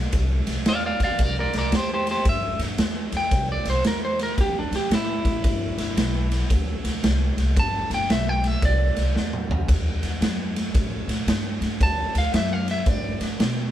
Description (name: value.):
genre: electric blues shuffle.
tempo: 113 BPM.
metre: 4/4.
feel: swing 64% on 8ths.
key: G major.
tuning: A4 = 443 Hz.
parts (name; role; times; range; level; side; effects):
electric guitar at the edge of break-up; melody; 0.0-13.7 s; D4 to A5; -26 LUFS; equal; none.
upright bass; bass; 0.0-13.7 s; G1 to B2; -26 LUFS; equal; none.
raw garage drum kit; drums; 0.1-13.6 s; crash cymbal, kick drum, ride cymbal, snare drum, toms; -23 LUFS; equal; none.
room: light reverb.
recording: band playing live in one room.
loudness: -21 LUFS.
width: side -12 dB against mid.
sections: 0.0-13.7 A section.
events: drum fill 9.2-9.7.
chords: 0.0 N.C.; 1.2 C; 5.4 G; 9.7 D.